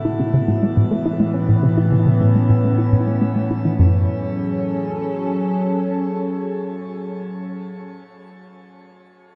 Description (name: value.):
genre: ambient, sequencer-driven space music.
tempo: 104 BPM.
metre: 4/4.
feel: straight.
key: F# minor.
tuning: A4 = 441 Hz.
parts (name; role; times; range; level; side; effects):
evolving wavetable pad; sustained chords; 0.0-6.9 s; A2 to A4; -22 LUFS; equal; chorus, built-in reverb, shimmer reverb.
plucky analog bass; riff; 0.0-4.1 s; F#2 to E4; -21 LUFS; equal; tape echo.
room: wet plate reverb, RT60 2.8 s.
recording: none.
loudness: -19 LUFS.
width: mono.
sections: 0.0-3.8 A section; 3.8-6.1 B section.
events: none.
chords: 0.0 Aadd9; 3.8 F#m.